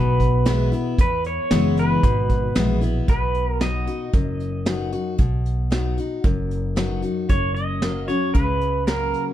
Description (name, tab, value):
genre	honky-tonk and classic country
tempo	114 BPM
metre	4/4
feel	straight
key	B major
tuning	A4 = 440 Hz
part	pedal steel guitar	melody	0.0-9.2 s	A#4 to D#5	-25 LUFS	right 2 dB	none
part	picked steel-string acoustic guitar	accompaniment	0.0-9.3 s	E2 to F#4	-25 LUFS	left 3 dB	none
part	upright bass	bass	0.0-9.1 s	F#1 to E2	-24 LUFS	equal	none
part	vintage brush drum kit	drums	0.2-9.3 s	hi-hat, kick drum, snare drum	-22 LUFS	equal	none
room	little or no reverb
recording	dark, warm production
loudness	-19 LUFS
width	side -12 dB against mid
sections	0.0-3.1 A section; 3.1-9.3 B section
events	none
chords	0.0 E; 3.1 B; 7.3 F#